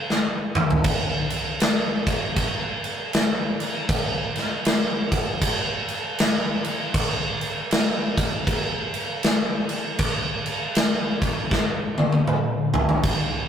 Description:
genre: metal.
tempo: 79 BPM.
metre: 4/4.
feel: swing 61% on 8ths.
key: none.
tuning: none.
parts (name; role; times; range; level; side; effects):
big rock drum kit; drums; 0.1-13.3 s; crash cymbal, kick drum, snare drum, toms; -21 LUFS; equal; none.
room: little or no reverb.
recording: rough rehearsal-room recording, tube saturation.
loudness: -21 LUFS.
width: side -8 dB against mid.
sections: 0.8-13.5 A section.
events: drum fill 0.1-0.8, 11.5-13.0.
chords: none.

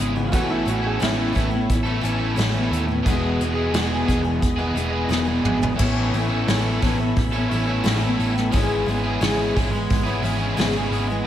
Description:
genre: folk rock and heartland rock.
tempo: 88 BPM.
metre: 4/4.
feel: straight.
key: unclear.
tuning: A4 = 440 Hz.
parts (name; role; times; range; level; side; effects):
picked twelve-string acoustic guitar; accompaniment; 0.0-11.3 s; E2 to G#4; -24 LUFS; left 2 dB; none.
bright tonewheel organ; sustained chords; 0.0-11.3 s; G#4 to B5; -35 LUFS; equal; none.
crunchy overdriven guitar; riff; 0.0-11.3 s; E2 to A4; -25 LUFS; right 2 dB; none.
hollow-body short-scale picked electric bass; bass; 0.0-11.2 s; E1 to D#2; -26 LUFS; equal; none.
clear upright piano; second line; 0.3-1.7 s; E4 to G#4; -28 LUFS; right 3 dB; none.
soft brush drum kit; drums; 0.3-11.1 s; crash cymbal, hi-hat, kick drum, snare drum, toms; -25 LUFS; equal; none.
room: moderate scoring stage reverb, RT60 1.9 s, studio reverb.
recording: big arena sound.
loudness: -19 LUFS.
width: side -11 dB against mid.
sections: 0.0-5.8 A section; 5.8-11.3 A section.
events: drum fill 5.1-5.8.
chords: 0.3 Aadd9; 3.1 Emaj7; 5.8 Aadd9; 8.5 C#m7/G#.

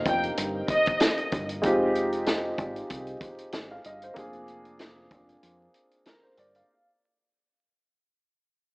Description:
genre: hip hop, boom-bap hip-hop.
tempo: 95 BPM.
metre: 4/4.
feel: swing 56% on 16ths.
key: unclear.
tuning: A4 = 440 Hz.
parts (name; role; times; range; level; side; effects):
dark upright piano; accompaniment; 0.0-6.9 s; Ab3 to F5; -29 LUFS; equal; cassette tape, high-pass filter, low-pass filter.
warm studio violin section; melody; 0.1-1.2 s; Eb5 to G5; -27 LUFS; equal; high-pass filter, low-pass filter, digital delay.
deep dub fingered electric bass; bass; 0.1-6.6 s; F1 to F2; -37 LUFS; equal; none.
vintage drum kit; drums; 0.1-6.7 s; hi-hat, kick drum, snare drum; -28 LUFS; equal; none.
room: moderate plate reverb, RT60 1.9 s, small room ambience.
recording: vinyl crackle, AM radio sound.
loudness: -24 LUFS.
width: side -27 dB against mid.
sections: 0.0-6.7 A section.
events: fade-out 0.0-6.7; break 5.4-6.7.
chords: 0.0 Cm7/F; 1.6 Fm7; 4.2 Bb7/F.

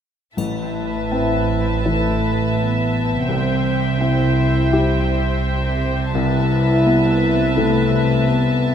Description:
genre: cinematic, emotional film score for orchestra.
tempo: 84 BPM.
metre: 4/4.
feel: rubato.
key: A minor.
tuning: A4 = 440 Hz.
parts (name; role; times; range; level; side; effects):
warm studio violin section; melody; 0.4-8.7 s; G5 to A5; -30 LUFS; left 3 dB; none.
warm studio violin section; second line; 0.4-8.7 s; E5; -26 LUFS; left 1 dB; none.
clear grand piano; accompaniment; 0.4-8.7 s; A1 to B4; -25 LUFS; left 3 dB; none.
warm studio viola section; accompaniment; 0.4-8.7 s; B4 to C5; -27 LUFS; equal; none.
mellow French horn section; sustained chords; 0.4-8.7 s; A3 to E4; -22 LUFS; left 3 dB; none.
concert harp; arpeggios; 0.4-8.7 s; A2 to E5; -26 LUFS; left 7 dB; none.
dark studio cello section; bass; 0.4-8.7 s; A2 to C3; -23 LUFS; right 4 dB; none.
rich symphonic double bass section; bass; 0.4-8.7 s; A1 to C2; -24 LUFS; right 3 dB; none.
triangle; percussion; 0.4-1.8 s; none; -41 LUFS; equal; none.
room: wet scoring stage reverb, RT60 1.5 s.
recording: none.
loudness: -16 LUFS.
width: side -8 dB against mid.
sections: 0.4-8.7 A section.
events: none.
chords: 0.4 Amadd9; 3.3 C; 6.2 Amadd9/C.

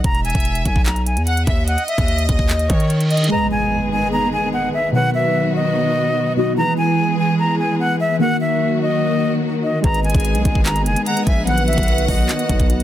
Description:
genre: hip hop, trap.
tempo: 147 BPM.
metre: 4/4.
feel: half-time.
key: G# minor.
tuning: A4 = 440 Hz.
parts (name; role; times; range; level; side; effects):
silver concert flute; melody; 0.0-12.8 s; D#5 to A#5; -21 LUFS; left 1 dB; none.
distorted 808-style bass; bass; 0.0-3.3, 9.8-12.8 s; E1 to D#3; -19 LUFS; equal; distortion.
trap drum kit; drums; 0.0-3.3, 9.8-12.8 s; handclaps, hi-hat, kick drum; -19 LUFS; equal; none.
clear studio violin section; second line; 0.2-3.3, 10.0-12.8 s; C#5 to A#5; -27 LUFS; equal; digital delay.
reverse cymbal and impact; sound effects; 2.8-4.9 s; none; -28 LUFS; right 1 dB; none.
warbly lo-fi synth keys; accompaniment; 3.3-12.8 s; B2 to D#5; -20 LUFS; equal; chorus, phaser.
warm studio string section; sustained chords; 3.3-12.8 s; D#3 to G#4; -24 LUFS; left 1 dB; none.
room: small room ambience.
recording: dense, heavily limited modern master.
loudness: -15 LUFS.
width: side -12 dB against mid.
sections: 0.0-3.3 A section; 3.3-12.8 B section.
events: reverse cymbal 2.8-3.3; impact 3.3-4.9.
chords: 0.0 E; 1.7 D#7(no3); 3.3 G#m; 4.9 B; 6.6 E; 8.2 D#m; 9.8 G#m; 11.5 B.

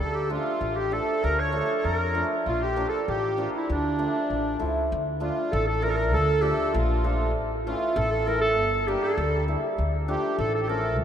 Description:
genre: klezmer.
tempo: 98 BPM.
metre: 2/4.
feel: straight.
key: D harmonic minor.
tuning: A4 = 438 Hz.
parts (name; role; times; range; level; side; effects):
warm clarinet; melody; 0.0-11.0 s; D4 to C#5; -27 LUFS; equal; none.
accordion; second line; 0.0-11.0 s; D4 to C#5; -31 LUFS; right 2 dB; light tremolo tuning.
hammered dulcimer; accompaniment; 0.0-11.0 s; E3 to E4; -29 LUFS; equal; none.
upright bass; bass; 0.0-11.0 s; G1 to F2; -28 LUFS; equal; none.
room: wet cathedral reverb, RT60 5.8 s.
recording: in a vast, echoing space.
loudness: -23 LUFS.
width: side -9 dB against mid.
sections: 0.0-4.9 A section; 4.9-11.0 B section.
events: none.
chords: 0.0 Dm; 2.5 Bb; 3.7 Dm; 7.4 A5; 8.6 Gm; 9.8 Dm.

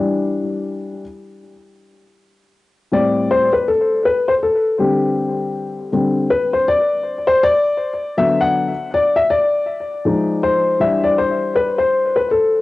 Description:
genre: hip hop.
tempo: 80 BPM.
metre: 4/4.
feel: swing 61% on 16ths.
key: A dorian.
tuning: A4 = 439 Hz.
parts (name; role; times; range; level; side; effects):
dark grand piano; solo; 0.0-12.6 s; A2 to F#5; -15 LUFS; left 2 dB; cassette tape, analog delay.
room: moderate studio reverb, RT60 0.6 s.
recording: home recording on cassette, nothing above 10.8 kHz.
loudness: -15 LUFS.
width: side -17 dB against mid.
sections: 0.0-1.8 A section; 1.8-12.6 B section.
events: grand piano solo 0.0-1.8, 1.8-12.6.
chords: 0.0 Em7; 1.8 Am7; 4.8 D7sus4; 7.8 D69; 10.1 Fm7; 10.8 Em7.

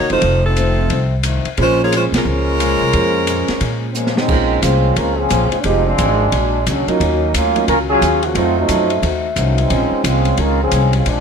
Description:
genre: jazz, big band swing.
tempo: 177 BPM.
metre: 4/4.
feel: swing 63% on 8ths.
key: Bb minor.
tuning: A4 = 439 Hz.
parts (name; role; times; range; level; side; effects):
warm saxophone section; melody; 0.0-3.9 s; F3 to Db5; -17 LUFS; left 1 dB; none.
picked steel-string acoustic guitar; accompaniment; 0.0-11.2 s; F2 to C5; -25 LUFS; left 8 dB; none.
upright bass; bass; 0.0-11.2 s; F1 to Bb2; -18 LUFS; equal; none.
warm upright piano; accompaniment; 0.1-10.7 s; F3 to C5; -22 LUFS; right 7 dB; none.
open jazz drum kit; drums; 0.1-11.2 s; crash cymbal, hi-hat, kick drum, ride cymbal, snare drum; -23 LUFS; left 1 dB; none.
mellow trombone section; second line; 3.9-11.2 s; Db3 to Bb4; -17 LUFS; right 1 dB; none.
room: light reverb.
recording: close, detailed microphones.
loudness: -13 LUFS.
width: side -6 dB against mid.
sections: 0.0-4.3 A section; 4.3-11.2 B section.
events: band accent 2.1; drum fill 4.0-4.3; trombone section solo 4.3-11.2.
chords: 0.2 F7; 1.6 Bbm7; 4.3 Bbm9; 5.6 Fm7; 6.3 Bb7alt; 7.0 Ebm9; 8.4 F7b9; 9.7 Bbm11.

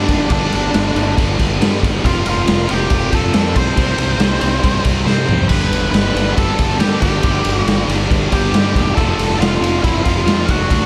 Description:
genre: quiet-loud alternative rock.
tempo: 139 BPM.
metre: 4/4.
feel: straight.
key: G major.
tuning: A4 = 440 Hz.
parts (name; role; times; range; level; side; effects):
octave-fuzz lead guitar; melody; 0.0-10.9 s; D4 to C6; -23 LUFS; equal; distortion, slapback echo, tape echo.
distorted electric guitar; riff; 0.0-10.9 s; F2 to D4; -28 LUFS; equal; none.
scooped high-gain guitar; riff; 0.0-10.9 s; F2 to D4; -29 LUFS; equal; none.
thick fuzz guitar; riff; 0.0-10.9 s; F2 to E4; -26 LUFS; equal; none.
fuzz fingered electric bass; bass; 0.0-10.9 s; E1 to C3; -23 LUFS; equal; overdrive.
raw garage drum kit; drums; 0.1-10.8 s; crash cymbal, kick drum, ride cymbal, snare drum, toms; -18 LUFS; equal; none.
room: light reverb, small room ambience.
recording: none.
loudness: -15 LUFS.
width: mono.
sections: 0.0-10.9 A section.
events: drum fill 5.1-5.5.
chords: 0.0 G; 2.0 F; 3.8 C; 5.5 G; 9.0 F.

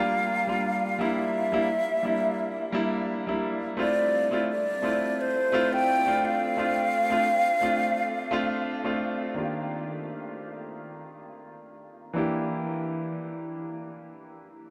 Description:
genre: chillout.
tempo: 86 BPM.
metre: 4/4.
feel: straight.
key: unclear.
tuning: A4 = 440 Hz.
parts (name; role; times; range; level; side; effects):
breathy concert flute; melody; 0.0-9.0 s; C5 to G5; -28 LUFS; equal; analog delay.
clear concert grand piano; accompaniment; 0.0-14.7 s; Eb3 to G4; -31 LUFS; equal; analog delay.
room: wet huge ambient reverb, RT60 7.7 s.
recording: dreamy mix soaked in reverb.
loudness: -27 LUFS.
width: mono.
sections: 0.0-9.4 A section; 9.4-14.7 B section.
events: none.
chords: 0.0 Gm7; 1.0 Gm6; 3.8 Dm7; 6.6 F6/A; 9.4 Ebmaj7; 12.2 Em7b5.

